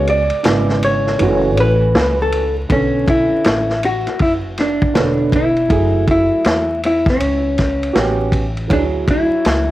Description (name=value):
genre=hip hop, jazz-hop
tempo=80 BPM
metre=4/4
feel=swing 64% on 16ths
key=F# minor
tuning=A4 = 440 Hz
part: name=vintage hollow-body jazz guitar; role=melody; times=0.0-9.7 s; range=C#4 to D5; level=-17 LUFS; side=left 1 dB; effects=cassette tape, plate reverb
part: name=dark upright piano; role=accompaniment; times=0.0-9.7 s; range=C#3 to C#5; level=-20 LUFS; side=right 4 dB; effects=cassette tape, plate reverb
part: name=upright bass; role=bass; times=0.0-9.7 s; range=E1 to E2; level=-21 LUFS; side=equal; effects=none
part: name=vintage drum kit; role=drums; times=0.1-9.7 s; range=hi-hat, kick drum, ride cymbal, snare drum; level=-19 LUFS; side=equal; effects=cassette tape
room=light reverb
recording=home recording on cassette, vinyl crackle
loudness=-13 LUFS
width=side -15 dB against mid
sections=0.0-2.7 A section; 2.7-9.7 B section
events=break 0.0-2.7; hollow-body jazz guitar solo 0.0-2.7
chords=0.0 C#7sus4; 1.2 F#m7; 2.7 Bm9; 5.7 F#m9; 8.0 A13; 8.7 Dmaj9#11